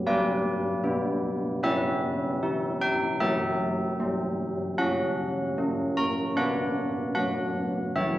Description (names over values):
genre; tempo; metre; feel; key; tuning
classical, tune for church bells; 76 BPM; 4/4; straight; B minor; A4 = 437 Hz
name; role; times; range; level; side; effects
old church bells; solo; 0.1-8.2 s; E3 to A#5; -25 LUFS; equal; none
room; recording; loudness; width
moderate scoring stage reverb, RT60 1.6 s; dark, warm production; -25 LUFS; side -15 dB against mid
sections
0.0-8.2 A section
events
none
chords
0.1 G; 1.6 C#m7b5; 3.2 F#7; 6.4 Bm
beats
| 0.06 0.85 1.63 2.42 | 3.21 4.00 4.79 5.58 | 6.37 7.16 7.95